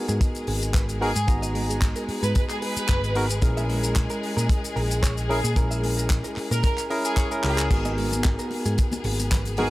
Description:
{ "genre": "nu-disco, nu disco", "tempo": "112 BPM", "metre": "4/4", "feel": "swing 53% on 16ths", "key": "G# minor", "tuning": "A4 = 440 Hz", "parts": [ { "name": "barky tine electric piano", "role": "accompaniment", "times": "0.0-9.7 s", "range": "B3 to A#5", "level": "-29 LUFS", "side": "equal", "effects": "sidechain pumping" }, { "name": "warm studio string section", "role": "sustained chords", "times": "0.0-9.7 s", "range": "G#3 to G#4", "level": "-33 LUFS", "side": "left 1 dB", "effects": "sidechain pumping" }, { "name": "direct-recorded clean electric guitar", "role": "riff", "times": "0.1-9.7 s", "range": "G#3 to E5", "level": "-36 LUFS", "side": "right 3 dB", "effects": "lush chorus, tape echo" }, { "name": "hollow-body short-scale picked electric bass", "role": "bass", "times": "0.1-9.7 s", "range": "F#1 to A#2", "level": "-26 LUFS", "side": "equal", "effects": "none" }, { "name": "tight funk drum kit", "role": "drums", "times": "0.1-9.7 s", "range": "crash cymbal, handclaps, hi-hat, shaker", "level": "-32 LUFS", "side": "left 2 dB", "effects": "studio ambience" }, { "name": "kick drum", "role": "drums", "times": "0.2-9.4 s", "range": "none", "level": "-22 LUFS", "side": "equal", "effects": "studio ambience" }, { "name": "warm studio violin section", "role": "melody", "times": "1.0-9.7 s", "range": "G#4 to B4", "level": "-31 LUFS", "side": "equal", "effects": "vintage 12-bit sampler grit, analog delay" }, { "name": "congas", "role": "percussion", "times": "7.8-9.7 s", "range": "none", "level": "-33 LUFS", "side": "left 1 dB", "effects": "none" } ], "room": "small room ambience", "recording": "dry, gritty hardware recording", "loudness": "-21 LUFS", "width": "side -18 dB against mid", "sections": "0.0-9.7 A section", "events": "drum fill 7.4", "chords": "0.0 G#m9; 3.4 A#m7b5; 7.7 G#m9" }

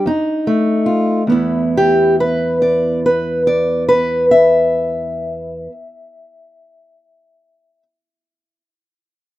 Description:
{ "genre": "acoustic country blues, solo or duo", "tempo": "48 BPM (dotted quarters)", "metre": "12/8", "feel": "straight", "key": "E minor", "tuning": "A4 = 440 Hz", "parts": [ { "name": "fingerpicked steel-string acoustic guitar", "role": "solo", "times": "0.0-7.8 s", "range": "E2 to E5", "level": "-13 LUFS", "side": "equal", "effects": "none" } ], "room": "moderate studio reverb, RT60 0.5 s", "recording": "minimal, uncompressed stereo recording", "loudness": "-13 LUFS", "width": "side -14 dB against mid", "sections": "0.0-1.3 A section; 1.3-6.3 B section", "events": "slowing down 0.0-1.3; steel-string acoustic guitar solo 0.0-1.3", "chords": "0.1 F7; 1.3 E5" }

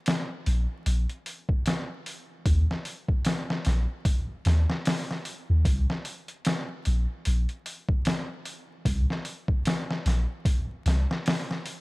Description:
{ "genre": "trip hop", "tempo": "75 BPM", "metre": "4/4", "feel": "swing 58% on 16ths", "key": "unclear", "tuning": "A4 = 443 Hz", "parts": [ { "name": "trip hop sampler-style drum kit", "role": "drums", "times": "0.1-11.8 s", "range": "hi-hat, kick drum, snare drum", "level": "-27 LUFS", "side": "equal", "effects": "overdrive" }, { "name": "soft 808-style bass", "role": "bass", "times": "0.5-11.1 s", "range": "Bb1 to Eb2", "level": "-23 LUFS", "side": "equal", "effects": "none" } ], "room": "little or no reverb", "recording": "vinyl crackle", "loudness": "-25 LUFS", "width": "side -24 dB against mid", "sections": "0.0-11.8 A section", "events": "none", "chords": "none" }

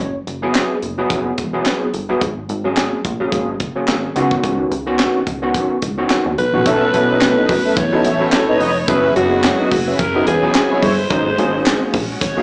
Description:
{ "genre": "early-eighties boogie funk", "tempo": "108 BPM", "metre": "4/4", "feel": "swing 56% on 16ths", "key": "unclear", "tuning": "A4 = 440 Hz", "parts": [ { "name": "overdriven tine electric piano", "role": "accompaniment", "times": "0.0-12.4 s", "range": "Eb3 to C#5", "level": "-21 LUFS", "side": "equal", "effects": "ensemble chorus, slapback echo" }, { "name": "plucky analog bass", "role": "bass", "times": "0.0-12.4 s", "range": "Fb1 to F#2", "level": "-25 LUFS", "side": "equal", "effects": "none" }, { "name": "tight funk drum kit", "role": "drums", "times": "0.3-12.4 s", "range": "handclaps, hi-hat, kick drum, snare drum", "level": "-22 LUFS", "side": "equal", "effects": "none" }, { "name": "breathy alto saxophone", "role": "melody", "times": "6.4-12.4 s", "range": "Gb4 to C#5", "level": "-21 LUFS", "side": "equal", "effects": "none" }, { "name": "mellow synth brass", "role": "second line", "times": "6.7-10.9 s", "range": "F#3 to E5", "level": "-22 LUFS", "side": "equal", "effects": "chorus, slapback echo" }, { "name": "phased string machine", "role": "sustained chords", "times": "6.7-12.4 s", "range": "Gb3 to Cb5", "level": "-30 LUFS", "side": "equal", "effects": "ensemble chorus, phaser" } ], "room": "moderate club ambience, RT60 0.5 s", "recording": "live gig heard through the venue's PA, club ambience, small speaker sound", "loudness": "-17 LUFS", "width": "mono", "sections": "0.0-6.7 A section; 6.7-12.4 B section", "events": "none", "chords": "0.0 Gb9sus4; 2.2 Ab9sus4; 4.2 Db9sus4; 6.7 B9sus4; 8.9 Gb9sus4; 11.1 Ab9sus4" }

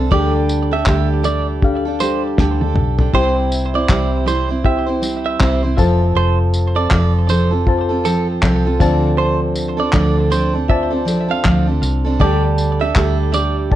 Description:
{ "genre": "acoustic pop", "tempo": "79 BPM", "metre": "4/4", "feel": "swing 60% on 16ths", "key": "unclear", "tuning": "A4 = 440 Hz", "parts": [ { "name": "picked steel-string acoustic guitar", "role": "accompaniment", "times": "0.0-13.8 s", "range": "C3 to C5", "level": "-19 LUFS", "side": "right 3 dB", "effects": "none" }, { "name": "reed electric piano", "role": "accompaniment", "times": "0.0-13.8 s", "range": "D4 to A5", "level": "-23 LUFS", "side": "left 6 dB", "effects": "spring reverb" }, { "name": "vintage muted fingered electric bass", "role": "bass", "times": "0.0-13.8 s", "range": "F1 to D2", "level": "-19 LUFS", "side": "equal", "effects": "none" }, { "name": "direct-recorded clean electric guitar", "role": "arpeggios", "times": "0.1-13.6 s", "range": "A4 to F5", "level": "-22 LUFS", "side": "right 5 dB", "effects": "digital delay" }, { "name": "cloth-damped thuddy drum kit", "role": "drums", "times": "0.1-13.8 s", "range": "handclaps, kick drum, snare drum, tambourine, toms", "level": "-17 LUFS", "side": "left 1 dB", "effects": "none" } ], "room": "light reverb", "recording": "worn, warbling old tape, cassette tape, warbly pitch drift", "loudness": "-14 LUFS", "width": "side -13 dB against mid", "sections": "0.0-13.8 A section", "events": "drum fill 2.4-3.1", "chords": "0.1 Gsus2/D; 3.1 C; 5.8 F; 8.8 Dm7; 12.2 Gsus2/D" }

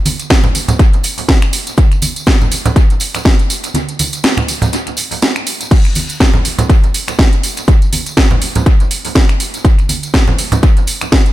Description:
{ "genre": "house", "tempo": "122 BPM", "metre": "4/4", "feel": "swing 56% on 16ths", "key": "none", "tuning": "none", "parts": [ { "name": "house drum kit", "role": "drums", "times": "0.1-11.3 s", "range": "crash cymbal, finger snaps, hi-hat, snare drum, tambourine", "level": "-16 LUFS", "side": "right 1 dB", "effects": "sidechain pumping on hats, sidechain pumping on perc, sidechain pumping on cymbals, tape echo" }, { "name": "tambourine and congas", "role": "percussion", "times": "0.1-11.2 s", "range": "none", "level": "-19 LUFS", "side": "right 2 dB", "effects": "sidechain pumping on perc, tape echo" }, { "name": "electronic kick drum", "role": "drums", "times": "0.3-11.2 s", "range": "none", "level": "-10 LUFS", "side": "equal", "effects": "none" } ], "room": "digital ambience", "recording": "echo-heavy mix", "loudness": "-10 LUFS", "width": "side -15 dB against mid", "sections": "0.0-11.3 A section", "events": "break 3.7-5.7", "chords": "none" }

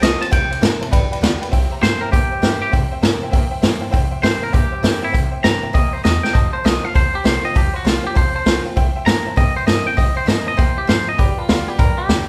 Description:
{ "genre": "rockabilly", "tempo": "199 BPM", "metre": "4/4", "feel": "swing 65% on 8ths", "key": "C mixolydian", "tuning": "A4 = 440 Hz", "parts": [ { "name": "twangy electric guitar", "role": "melody", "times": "0.0-12.2 s", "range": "E4 to Bb5", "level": "-24 LUFS", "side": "equal", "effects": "none" }, { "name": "picked steel-string acoustic guitar", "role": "accompaniment", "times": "0.0-12.3 s", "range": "F2 to F4", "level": "-31 LUFS", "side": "equal", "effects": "none" }, { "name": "tack piano", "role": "accompaniment", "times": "0.0-12.2 s", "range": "B4 to C6", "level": "-30 LUFS", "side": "equal", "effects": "none" }, { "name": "upright bass", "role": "bass", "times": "0.0-12.3 s", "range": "F1 to Bb2", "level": "-27 LUFS", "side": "equal", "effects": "none" }, { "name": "vintage drum kit", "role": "drums", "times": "0.0-12.2 s", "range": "hi-hat, kick drum, ride cymbal, snare drum", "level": "-19 LUFS", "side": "equal", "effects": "none" } ], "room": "moderate large studio reverb, RT60 0.8 s", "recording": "band playing live in one room", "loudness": "-17 LUFS", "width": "mono", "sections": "0.0-1.5 A section; 1.5-12.3 B section", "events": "clean electric guitar solo 0.0-1.5; drum fill 6.2", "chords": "0.3 C7; 0.9 G7; 1.5 C7; 6.3 F7; 8.8 C7; 11.2 G7" }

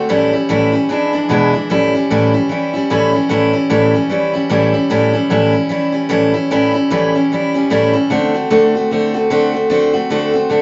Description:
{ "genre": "rock", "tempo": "150 BPM", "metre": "4/4", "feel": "swing 59% on 8ths", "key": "A mixolydian", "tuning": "A4 = 442 Hz", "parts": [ { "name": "picked steel-string acoustic guitar", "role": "solo", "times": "0.0-10.6 s", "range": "E2 to F#4", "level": "-15 LUFS", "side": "equal", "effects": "none" } ], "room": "wet studio reverb, RT60 0.6 s", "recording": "nothing above 7.7 kHz", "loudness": "-15 LUFS", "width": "mono", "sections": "0.0-1.7 A section; 1.7-10.6 B section", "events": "none", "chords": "0.1 A7; 0.9 E7; 1.7 A7; 8.1 D7" }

